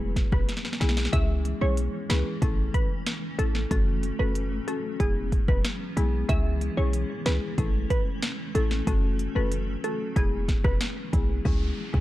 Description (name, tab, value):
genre	dancehall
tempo	93 BPM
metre	4/4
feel	straight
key	C# minor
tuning	A4 = 436 Hz
part	marimba with medium mallets	accompaniment	0.0-12.0 s	G#3 to A4	-33 LUFS	left 4 dB	sidechain pumping
part	granular cloud pad	sustained chords	0.0-11.4 s	E3 to C#4	-35 LUFS	left 1 dB	built-in reverb, sidechain pumping
part	short 808-style bass	bass	0.0-12.0 s	E1 to C#2	-26 LUFS	equal	none
part	afro-pop drum kit	drums	0.2-12.0 s	hi-hat, kick drum, rim click, snare drum	-26 LUFS	equal	none
part	glassy wavetable pluck	melody	0.3-10.8 s	G#4 to E5	-34 LUFS	right 1 dB	chorus, tape echo
part	downlifter	sound effects	11.5-12.0 s	none	-39 LUFS	equal	none
room	digital ambience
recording	dark, warm production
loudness	-24 LUFS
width	side -15 dB against mid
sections	0.0-11.5 A section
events	drum fill 0.5-1.1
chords	0.0 E; 1.1 C#m; 2.4 A; 3.7 F#m; 5.0 E; 6.3 C#m; 7.6 A; 8.9 F#m; 10.2 E; 11.5 C#m